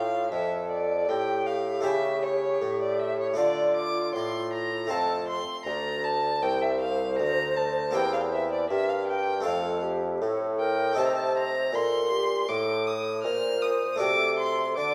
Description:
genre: classical, baroque-style sonata movement with continuo.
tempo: 79 BPM.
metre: 4/4.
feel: straight.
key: unclear.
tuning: A4 = 441 Hz.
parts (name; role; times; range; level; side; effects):
hollow concert flute; melody; 0.0-14.9 s; F4 to D5; -34 LUFS; equal; none.
warm violin; second line; 0.0-14.9 s; C#5 to F6; -32 LUFS; equal; none.
harpsichord; accompaniment; 0.0-14.9 s; C2 to A4; -35 LUFS; equal; none.
warm bassoon; bass; 0.0-14.9 s; C2 to D3; -32 LUFS; equal; none.
room: moderate scoring stage reverb, RT60 1.5 s.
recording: none.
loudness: -27 LUFS.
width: mono.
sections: 0.0-14.9 A section.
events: none.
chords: 0.0 Dm; 1.9 A7/C#; 3.4 Dm; 4.9 F; 7.9 C7/E; 9.5 F; 11.0 Adim; 14.0 D7/C.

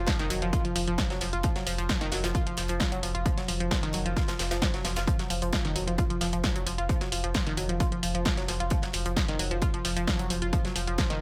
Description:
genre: driving peak-time techno.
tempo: 132 BPM.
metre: 4/4.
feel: straight.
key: unclear.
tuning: A4 = 439 Hz.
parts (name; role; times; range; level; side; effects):
analog pluck; riff; 0.0-11.2 s; Eb3 to F4; -34 LUFS; equal; chorus, phaser, tube saturation, sidechain pumping, digital delay.
saturated sub bass; bass; 0.0-11.2 s; F1; -36 LUFS; equal; tube saturation, sidechain pumping, low-pass filter.
electronic kick drum; drums; 0.1-11.1 s; none; -32 LUFS; equal; none.
punchy analog drum machine; drums; 0.1-11.2 s; hi-hat, snare drum; -35 LUFS; equal; none.
tight metal drum kit; drums; 0.1-11.1 s; hi-hat, snare drum; -41 LUFS; equal; sidechain pumping on hats, high-pass filter on hats, high-pass filter on snare, high-pass filter on room.
room: light reverb.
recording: none.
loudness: -28 LUFS.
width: mono.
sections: 0.0-11.2 A section.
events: none.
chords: none.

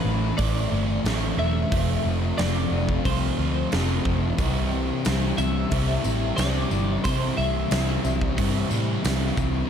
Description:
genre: rock, shoegaze and dream pop.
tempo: 90 BPM.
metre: 4/4.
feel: straight.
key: C major.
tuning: A4 = 440 Hz.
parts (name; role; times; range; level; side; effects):
twelve-string electric guitar; melody; 0.0-8.3 s; B4 to E5; -32 LUFS; left 2 dB; analog chorus, digital delay.
overdriven semi-hollow guitar; riff; 0.0-9.7 s; A2 to F4; -29 LUFS; right 11 dB; reverse reverb.
thick fuzz guitar; riff; 0.0-9.7 s; F2 to C4; -28 LUFS; left 10 dB; distortion, lush chorus.
vintage muted fingered electric bass; bass; 0.0-9.6 s; E1 to C3; -26 LUFS; equal; none.
huge arena drum kit; drums; 0.4-9.5 s; hi-hat, kick drum, snare drum; -28 LUFS; right 1 dB; none.
tambourine; percussion; 4.4-9.5 s; none; -41 LUFS; left 12 dB; none.
room: little or no reverb.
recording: dark, warm production.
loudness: -21 LUFS.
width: side -8 dB against mid.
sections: 0.0-9.7 A section.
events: none.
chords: 0.0 Am9; 1.7 Fmaj7; 4.4 C.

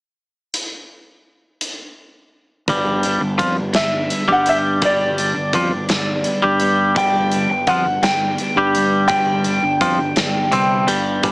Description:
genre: indie rock.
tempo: 56 BPM (dotted quarters).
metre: 6/8.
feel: straight.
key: G major.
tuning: A4 = 440 Hz.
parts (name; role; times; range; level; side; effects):
big rock drum kit; drums; 0.5-11.3 s; hi-hat, kick drum, snare drum; -24 LUFS; equal; none.
twangy electric guitar; riff; 2.7-11.3 s; G2 to G4; -18 LUFS; equal; none.
twelve-string electric guitar; riff; 2.7-11.3 s; D3 to D4; -25 LUFS; equal; lush chorus, slapback echo.
growling fingered electric bass; bass; 2.7-11.3 s; G1 to G2; -24 LUFS; equal; overdrive.
clear upright piano; melody; 3.8-10.8 s; D5 to G5; -19 LUFS; equal; slapback echo.
room: light reverb.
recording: heavily compressed radio sound, small speaker sound.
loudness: -15 LUFS.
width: side -32 dB against mid.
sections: 0.5-2.7 A section; 2.7-11.3 B section.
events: none.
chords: 0.5 N.C.; 2.7 G.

